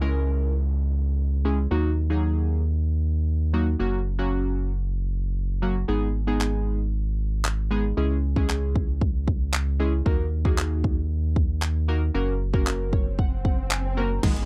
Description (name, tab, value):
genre	dance-pop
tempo	115 BPM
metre	4/4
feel	straight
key	unclear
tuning	A4 = 440 Hz
part	glassy digital keys	accompaniment	0.0-14.5 s	F#3 to A#5	-31 LUFS	equal	chorus, sidechain pumping
part	round analog bass	bass	0.0-14.4 s	F#1 to D#2	-27 LUFS	equal	sidechain pumping
part	downlifter, swell and riser	sound effects	0.0-1.7, 13.1-14.5 s	none	-42 LUFS	equal	none
part	pop drum kit	drums	6.4-14.5 s	crash cymbal, handclaps, hi-hat, kick drum, snare drum	-26 LUFS	equal	none
part	mallet-like synth pluck	arpeggios	14.2-14.3 s	D#3	-34 LUFS	equal	chorus, sidechain pumping, slapback echo
room	little or no reverb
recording	dry, close 1970s-style studio recording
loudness	-25 LUFS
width	mono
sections	0.0-14.2 A section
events	synth keys fill 12.7-14.2; swell 13.1-14.2; drum fill 14.2; riser 14.2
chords	0.0 C#m; 1.7 D#m; 3.8 F#; 5.9 G#m; 8.0 C#m; 10.1 D#m; 12.1 F#